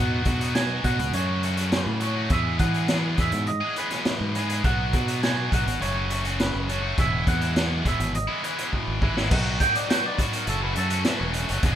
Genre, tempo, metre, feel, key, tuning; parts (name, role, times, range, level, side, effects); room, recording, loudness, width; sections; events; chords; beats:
indie rock; 103 BPM; 4/4; straight; E major; A4 = 440 Hz
twangy electric guitar; melody; 0.0-11.6 s; A4 to G#5; -30 LUFS; right 3 dB; slapback echo
high-gain distorted guitar; riff; 0.0-11.8 s; E2 to G#4; -27 LUFS; left 1 dB; distortion
growling fingered electric bass; bass; 0.0-11.8 s; E1 to E3; -27 LUFS; equal; overdrive
raw garage drum kit; drums; 0.3-11.8 s; crash cymbal, hi-hat, kick drum, snare drum; -26 LUFS; equal
studio reverb; rough home demo mix; -22 LUFS; side -10 dB against mid
0.0-9.3 A section; 9.3-11.8 B section
drum fill 8.7-9.3; clean electric guitar solo 9.3-11.8
0.0 B; 1.1 F#m; 2.3 E; 4.6 B; 5.8 F#m; 7.0 E; 9.3 B; 10.5 F#m7
0.56 1.14 1.73 | 2.31 2.90 3.48 4.06 | 4.65 5.23 5.82 6.40 | 6.98 7.57 8.15 8.73 | 9.31 9.89 10.47 11.05 | 11.63